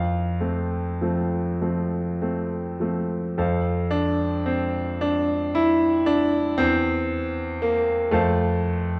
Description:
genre	classical, romantic nocturne for solo piano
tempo	32-40 BPM (dotted quarters)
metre	12/8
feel	rubato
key	F major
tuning	A4 = 439 Hz
part	bright grand piano	solo	0.0-9.0 s	E2 to A5	-24 LUFS	equal	none
room	wet recital hall reverb, RT60 1.4 s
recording	dark, warm production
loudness	-24 LUFS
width	mono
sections	0.0-3.4 A section; 3.4-9.0 B section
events	none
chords	0.0 F; 6.6 C/E; 8.1 F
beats	1.59 | 3.36 5.01 6.61 8.14

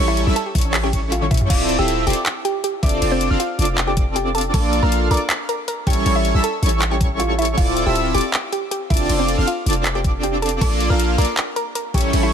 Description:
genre	future bass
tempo	158 BPM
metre	4/4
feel	half-time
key	D minor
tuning	A4 = 441 Hz
part	airy dreamy lead	arpeggios	0.0-12.3 s	C#6 to F6	-27 LUFS	equal	chorus, sidechain pumping, digital delay
part	soft supersaw	riff	0.0-12.3 s	G3 to F5	-22 LUFS	equal	sidechain pumping
part	warm 808-style bass	bass	0.0-12.3 s	D1 to Bb1	-21 LUFS	equal	sidechain pumping
part	mallet-like synth pluck	melody	0.1-12.3 s	C4 to Bb5	-25 LUFS	right 1 dB	chorus, phaser, sidechain pumping, digital delay
part	soft round pluck	arpeggios	0.1-1.4 s	C#4 to C#5	-36 LUFS	right 3 dB	none
part	trap drum kit	drums	0.2-12.2 s	crash cymbal, handclaps, hi-hat, toms	-25 LUFS	left 1 dB	none
part	electronic kick drum	drums	0.6-12.0 s	none	-19 LUFS	equal	none
room	digital ambience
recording	none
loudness	-16 LUFS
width	side -8 dB against mid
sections	0.0-1.5 A section; 1.5-12.3 A section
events	drop 0.0-1.5, 1.5-12.3; drum fill 1.2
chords	0.0 A7; 1.5 Dm9; 2.8 F6; 4.5 Bbmaj7; 5.9 A7; 7.6 Dm9; 8.9 F6; 10.6 Bbmaj7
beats	0.36 0.74 1.12 | 1.50 1.88 2.26 2.64 | 3.02 3.40 3.78 4.16 | 4.54 4.92 5.30 5.68 | 6.06 6.44 6.82 7.20 | 7.58 7.96 8.34 8.71 | 9.09 9.47 9.85 10.23 | 10.61 10.99 11.37 11.75 | 12.13

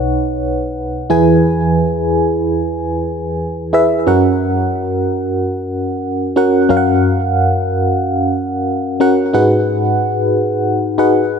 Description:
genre	pop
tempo	91 BPM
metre	4/4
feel	straight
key	unclear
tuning	A4 = 440 Hz
part	FM electric piano with tremolo	solo	0.0-11.4 s	B1 to G#5	-13 LUFS	equal	phaser, ping-pong delay
room	moderate lush hall reverb, RT60 2.7 s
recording	none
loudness	-13 LUFS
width	side -6 dB against mid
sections	0.0-9.3 A section; 9.3-11.4 B section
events	none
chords	0.0 Badd9; 1.1 E; 4.1 F#; 9.3 G#m7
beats	0.11 0.77 | 1.43 2.09 2.75 3.40 | 4.06 4.72 5.38 6.04 | 6.70 7.36 8.02 8.68 | 9.34 10.00 10.66 11.32

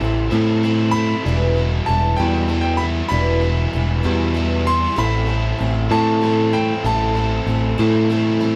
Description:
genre	rock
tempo	64 BPM (dotted quarters)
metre	6/8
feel	straight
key	A minor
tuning	A4 = 440 Hz
part	bright concert grand piano	melody	0.0-8.4 s	G5 to C6	-26 LUFS	equal	none
part	dark upright piano	accompaniment	0.0-8.6 s	none	barely audible	none	none
part	picked twelve-string acoustic guitar	accompaniment	0.0-8.6 s	A2 to B4	-30 LUFS	equal	none
part	crunchy overdriven guitar	riff	0.0-8.6 s	E2 to E4	-26 LUFS	equal	none
part	picked electric bass	bass	0.0-8.6 s	E1 to A2	-20 LUFS	equal	none
room	moderate studio reverb, RT60 0.5 s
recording	band playing live in one room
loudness	-18 LUFS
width	mono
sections	0.0-8.6 A section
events	none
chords	0.0 Am; 1.2 Em7; 5.0 Am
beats	0.32 | 1.25 2.18 | 3.11 4.05 | 4.98 5.91 | 6.85 7.78

